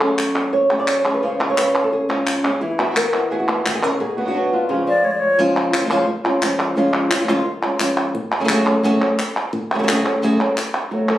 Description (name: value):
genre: flamenco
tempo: 173 BPM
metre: 4/4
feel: straight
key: C# phrygian dominant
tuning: A4 = 440 Hz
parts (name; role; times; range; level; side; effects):
- flamenco guitar; melody; 0.0-11.2 s; F#2 to D5; -18 LUFS; equal; plate reverb
- flamenco guitar; stabs; 0.0-5.1, 10.9-11.0 s; E2 to G#4; -25 LUFS; right 2 dB; none
- palmas hand claps; percussion; 0.0-11.2 s; none; -21 LUFS; equal; none
- bright wooden flute; second line; 4.9-5.4 s; C#5 to D5; -16 LUFS; left 1 dB; none
room: moderate studio reverb, RT60 0.8 s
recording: recorded on a phone in the room, studio reverb, compression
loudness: -16 LUFS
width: side -13 dB against mid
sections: 0.0-5.4 A section; 5.4-10.9 B section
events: none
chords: 0.0 F#madd9; 1.2 C#; 2.6 Esus2; 4.0 Bm; 4.7 C#; 8.1 F#madd9